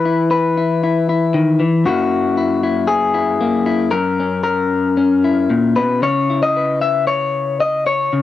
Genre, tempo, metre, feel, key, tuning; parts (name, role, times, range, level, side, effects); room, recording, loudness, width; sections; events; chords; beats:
folk, solo fingerstyle acoustic guitar; 116 BPM; 4/4; rubato; A4 = 440 Hz
electric guitar through a small old amp; solo; 0.0-8.2 s; F#2 to E5; -14 LUFS; left 3 dB; cassette tape
wet studio reverb, RT60 0.5 s; home recording on cassette; -14 LUFS; side -12 dB against mid
0.0-8.2 A section
0.0 E5; 1.9 F#7; 6.0 C#m7
0.31 0.83 1.35 | 1.86 2.37 2.88 3.39 | 3.91 4.43 4.95 5.49 | 6.02 6.55 7.08 7.60 | 8.12